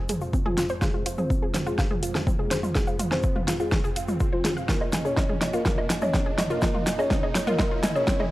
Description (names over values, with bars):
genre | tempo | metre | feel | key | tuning
melodic techno | 124 BPM | 4/4 | straight | F minor | A4 = 441 Hz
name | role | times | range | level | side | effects
dark analog pad | sustained chords | 0.0-8.3 s | Ab3 to Eb5 | -35 LUFS | right 2 dB | chorus, sidechain pumping
analog pluck | arpeggios | 0.0-8.3 s | C4 to Ab5 | -32 LUFS | equal | chorus, sidechain pumping, tape echo
analog drone | drone | 0.0-8.3 s | F2 | -39 LUFS | equal | chorus, sidechain pumping
riser | sound effects | 0.0-8.3 s | none | -41 LUFS | right 2 dB | none
deep house drum kit | drums | 0.1-8.3 s | hi-hat, snare drum, toms, woodblock | -27 LUFS | equal | overdrive
tube shaker | percussion | 0.1-8.2 s | none | -42 LUFS | left 2 dB | none
electronic kick drum | drums | 0.3-8.2 s | none | -27 LUFS | equal | overdrive
soft octave-layered synth lead | melody | 0.5-8.2 s | F4 to Db5 | -30 LUFS | left 1 dB | chorus, tremolo, tape echo
room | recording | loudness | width
light reverb | dry, gritty hardware recording | -22 LUFS | side -17 dB against mid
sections
0.0-8.3 A section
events
build-up 0.0-8.3; drum fill 0.0-8.3; filter sweep on synth arpeggio sound 0.0-8.3; filter sweep on soft synth lead 0.0-8.3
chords
0.0 Fm; 4.7 Ebsus2